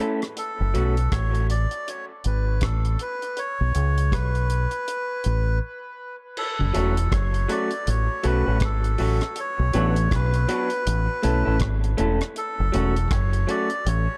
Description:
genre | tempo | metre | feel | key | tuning
dub reggae | 80 BPM | 4/4 | swing 60% on 16ths | F# minor | A4 = 440 Hz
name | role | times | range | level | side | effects
electric guitar through a small old amp | accompaniment | 0.0-0.9, 6.7-13.7 s | F#3 to A4 | -30 LUFS | equal | dub echo
deep reggae drum kit | drums | 0.2-14.1 s | crash cymbal, hi-hat, kick drum, rim click | -31 LUFS | equal | none
melodica | melody | 0.4-14.2 s | A4 to D5 | -31 LUFS | equal | dub echo
deep dub fingered electric bass | bass | 0.6-14.1 s | E1 to C#2 | -24 LUFS | equal | none
mellow tonewheel organ | accompaniment | 6.6-6.7 s | F#2 to C#3 | -33 LUFS | equal | stopped rotary speaker
room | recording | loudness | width
light reverb, small room reverb | dark, warm production | -24 LUFS | mono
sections
0.0-6.4 A section; 6.4-14.2 B section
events
break 5.6-6.4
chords
0.4 F#m; 3.4 Bsus2; 4.9 Asus2; 6.4 F#m; 9.4 Bm; 10.9 A; 12.4 F#m

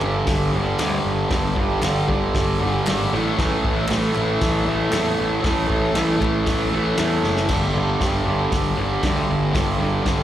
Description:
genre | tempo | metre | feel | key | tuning
garage rock duo or trio | 116 BPM | 4/4 | straight | unclear | A4 = 439 Hz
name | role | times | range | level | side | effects
fuzz guitar | riff | 0.0-10.2 s | G2 to A3 | -20 LUFS | right 1 dB | distortion, slapback echo
fuzz picked electric bass | bass | 0.0-10.2 s | F#1 to E2 | -24 LUFS | equal | overdrive
group handclap | percussion | 0.0-7.1 s | none | -32 LUFS | left 1 dB | none
vintage drum kit | drums | 0.3-10.2 s | crash cymbal, hi-hat, kick drum, snare drum | -26 LUFS | equal | none
room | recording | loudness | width
light reverb | live gig heard through the venue's PA, recital hall reverb | -18 LUFS | side -11 dB against mid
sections
0.0-7.5 A section; 7.5-10.2 B section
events
drum fill 7.2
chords
0.0 G5; 3.1 A5; 7.5 G5

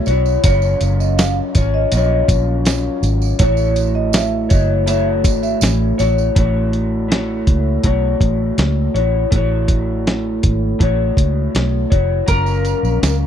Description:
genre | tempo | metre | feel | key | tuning
indie pop, bedroom pop | 81 BPM | 4/4 | straight | unclear | A4 = 445 Hz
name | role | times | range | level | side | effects
electric guitar through a small old amp | accompaniment | 0.0-13.3 s | Gb3 to C#5 | -19 LUFS | left 3 dB | wide subtle chorus, vibrato effect
vibraphone with medium mallets | second line | 0.1-6.2 s | C#5 to F5 | -24 LUFS | right 11 dB | wide subtle chorus, tape echo
vintage muted fingered electric bass | bass | 0.1-13.3 s | F1 to C#2 | -18 LUFS | equal | none
dusty soul sampler-style drum kit | drums | 0.1-13.2 s | hi-hat, kick drum, snare drum | -16 LUFS | equal | none
tambourine | percussion | 0.1-6.3, 12.3-13.2 s | none | -32 LUFS | right 20 dB | none
electric guitar through a small old amp | melody | 12.3-13.3 s | Bb4 | -20 LUFS | left 2 dB | analog chorus, tape echo
room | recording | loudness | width
little or no reverb | dry, close 1970s-style studio recording | -14 LUFS | side -9 dB against mid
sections
0.0-6.4 A section; 6.4-12.3 B section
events
none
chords
0.4 Gbmaj7; 3.4 A6; 12.3 Gbmaj7

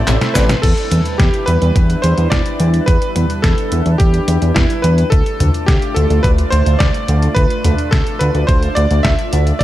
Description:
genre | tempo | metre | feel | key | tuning
synthwave | 107 BPM | 4/4 | straight | unclear | A4 = 442 Hz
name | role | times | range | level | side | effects
clear electric grand piano | melody | 0.0-9.6 s | E4 to E5 | -20 LUFS | equal | ping-pong delay
lush unison pad | sustained chords | 0.0-9.6 s | G3 to D5 | -23 LUFS | right 1 dB | chorus, phaser, sidechain pumping
soft round pluck | arpeggios | 0.0-0.6 s | none | barely audible | none | none
fat analog bass | bass | 0.0-9.6 s | G1 to E2 | -14 LUFS | equal | none
detuned 8-bit digital drum machine | drums | 0.1-9.6 s | crash cymbal, handclaps, hi-hat, shaker, snare drum, toms | -20 LUFS | equal | small room ambience
electronic kick drum | drums | 0.4-9.6 s | none | -15 LUFS | equal | small room ambience
room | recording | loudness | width
light reverb, digital ambience | dark, warm production | -12 LUFS | side -14 dB against mid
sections
0.6-9.6 A section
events
drum fill 0.0-0.6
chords
0.0 Am; 0.6 Em7; 5.1 Dm

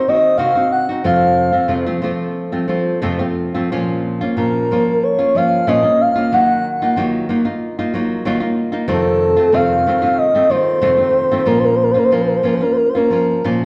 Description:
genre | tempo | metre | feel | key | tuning
mexican folk, mariachi | 92 BPM | 4/4 | rubato | Bb harmonic minor | A4 = 440 Hz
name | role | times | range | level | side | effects
pure breathy sine lead | melody | 0.0-13.5 s | A4 to Gb5 | -17 LUFS | equal | chorus, phaser
nylon-string guitar | accompaniment | 0.0-13.6 s | F2 to Gb4 | -20 LUFS | equal | none
room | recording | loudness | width
wet recital hall reverb, RT60 1.4 s | worn, warbling old tape, cassette tape, warbly pitch drift | -16 LUFS | mono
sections
0.0-13.7 A section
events
none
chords
0.0 Cdim; 1.0 F; 3.7 Bbm; 6.3 Ebmadd9; 8.9 F7; 11.5 Bbm

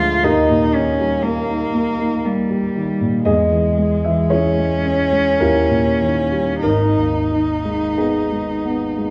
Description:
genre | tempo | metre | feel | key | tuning
classical, romantic duo for cello and grand piano | 44-60 BPM | 3/4 | rubato | unclear | A4 = 440 Hz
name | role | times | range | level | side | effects
rich cello | melody | 0.0-9.1 s | G3 to E#4 | -22 LUFS | equal | none
warm concert grand piano | accompaniment | 0.0-9.1 s | G#1 to A#5 | -20 LUFS | equal | none
room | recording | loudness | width
moderate scoring stage reverb, RT60 1.9 s | dark, warm production | -18 LUFS | mono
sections
0.0-9.1 A section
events
none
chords
0.2 D#; 3.3 C#m/E; 5.4 D#7b9; 6.6 G#m

